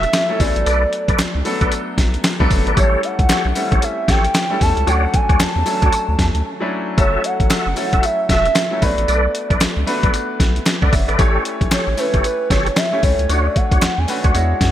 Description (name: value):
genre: R&B, new jack swing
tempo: 114 BPM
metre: 4/4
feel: swing 60% on 16ths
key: unclear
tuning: A4 = 440 Hz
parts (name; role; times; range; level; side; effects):
- hollow clarinet-like synth lead; melody; 0.0-14.7 s; B4 to A5; -21 LUFS; right 1 dB; chorus, digital delay
- clear baby grand piano; accompaniment; 0.0-14.7 s; F#3 to F#5; -24 LUFS; left 1 dB; lush chorus
- tonewheel organ; stabs; 0.0-14.4 s; D4 to E5; -24 LUFS; left 1 dB; chorus vibrato, fast rotary speaker
- round analog bass; bass; 0.0-14.7 s; E1 to F#2; -20 LUFS; equal; none
- boom bap sampler-style drum kit; drums; 0.0-14.7 s; handclaps, hi-hat, kick drum, snare drum, tambourine; -18 LUFS; equal; gated reverb
- group handclap; percussion; 0.1-14.2 s; none; -33 LUFS; left 5 dB; none
room: light reverb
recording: bright 1980s-style digital production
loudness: -14 LUFS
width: side -11 dB against mid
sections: 0.0-14.7 A section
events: break 6.5-7.0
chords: 0.4 Bm7; 2.8 A7; 4.9 Dmaj7; 7.0 F#m7; 8.8 Bm7; 11.2 A7; 13.3 Dmaj7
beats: 0.14 | 0.66 1.19 1.72 2.24 | 2.77 3.29 3.82 4.35 | 4.87 5.40 5.93 6.45 | 6.98 7.50 8.03 8.56 | 9.08 9.61 10.14 10.66 | 11.19 11.71 12.24 12.77 | 13.29 13.82 14.35